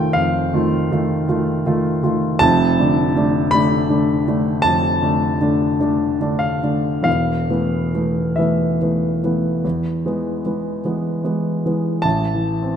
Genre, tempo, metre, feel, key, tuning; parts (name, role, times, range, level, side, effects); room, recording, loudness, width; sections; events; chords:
classical, romantic nocturne for solo piano; 45-55 BPM; 4/4; rubato; A4 = 440 Hz
warm grand piano; solo; 0.0-12.8 s; E1 to B5; -16 LUFS; equal
moderate scoring stage reverb, RT60 2.1 s; -16 LUFS; side -8 dB against mid
0.0-12.0 A section
0.0 F7; 2.4 Dm/F; 7.1 Esus4; 9.6 E; 12.0 Am